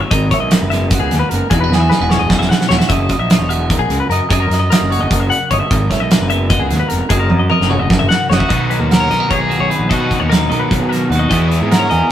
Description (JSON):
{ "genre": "math rock and midwest emo", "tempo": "300 BPM (eighths)", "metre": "7/8", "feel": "straight", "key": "B major", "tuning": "A4 = 439 Hz", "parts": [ { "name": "clean electric guitar", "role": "accompaniment", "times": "0.0-12.1 s", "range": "G#2 to E5", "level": "-20 LUFS", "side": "right 5 dB", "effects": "none" }, { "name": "twelve-string electric guitar", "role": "arpeggios", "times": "0.0-12.1 s", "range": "F#4 to F#5", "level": "-20 LUFS", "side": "left 6 dB", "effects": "none" }, { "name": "fuzz fingered electric bass", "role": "bass", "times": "0.1-12.0 s", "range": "E1 to B2", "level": "-17 LUFS", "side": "equal", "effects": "overdrive" }, { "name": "loose indie drum kit", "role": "drums", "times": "0.1-12.0 s", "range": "hi-hat, kick drum, snare drum, toms", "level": "-16 LUFS", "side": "right 1 dB", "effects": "none" }, { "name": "bright trumpet", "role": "melody", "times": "8.3-12.1 s", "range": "F#4 to A#4", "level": "-19 LUFS", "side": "equal", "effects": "none" }, { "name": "overdriven electric guitar", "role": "riff", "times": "8.5-12.1 s", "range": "B2 to E4", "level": "-20 LUFS", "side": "equal", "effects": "none" } ], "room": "moderate stone room reverb, RT60 1.0 s", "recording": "rough rehearsal-room recording", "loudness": "-12 LUFS", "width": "side -11 dB against mid", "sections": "0.0-8.5 A section; 8.5-12.1 B section", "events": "drum fill 1.7-2.9, 7.3-8.5", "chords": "0.1 G#m9; 1.5 E69; 2.9 F#13; 5.7 G#m9; 7.1 F#13; 8.5 Bmaj9; 11.3 Emaj9" }